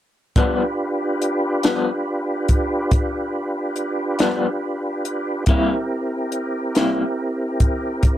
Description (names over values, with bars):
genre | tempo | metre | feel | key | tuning
slow blues | 47 BPM (dotted quarters) | 12/8 | straight | G mixolydian | A4 = 440 Hz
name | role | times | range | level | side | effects
electric guitar through a small old amp | accompaniment | 0.4-7.0 s | G2 to E4 | -20 LUFS | left 3 dB | tremolo
tonewheel organ | sustained chords | 0.4-8.2 s | C4 to B4 | -22 LUFS | right 1 dB | slow rotary speaker, overdrive, chorus vibrato
compact cocktail drum kit | drums | 0.4-8.2 s | hi-hat, kick drum, snare drum | -18 LUFS | equal | none
room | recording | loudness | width
little or no reverb | dry, close 1970s-style studio recording | -19 LUFS | side -12 dB against mid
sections
0.4-8.2 A section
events
none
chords
0.4 G7; 5.5 C7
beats
| 0.36 1.64 2.92 4.20 | 5.48 6.76 8.04